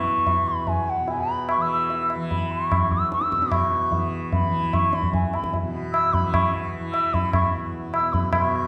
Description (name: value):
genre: indian classical, Hindustani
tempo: 149 BPM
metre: 3/4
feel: straight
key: unclear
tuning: A4 = 442 Hz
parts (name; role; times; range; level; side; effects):
- mellow bansuri; melody; 0.0-8.7 s; F#5 to E6; -26 LUFS; equal; none
- tanpura; drone; 0.0-8.7 s; E2 to E3; -32 LUFS; equal; none
- tabla; percussion; 0.3-8.5 s; none; -27 LUFS; equal; none
room: wet scoring stage reverb, RT60 1.5 s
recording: none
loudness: -23 LUFS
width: mono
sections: 0.0-8.3 A section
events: speeding up 0.0-8.7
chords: none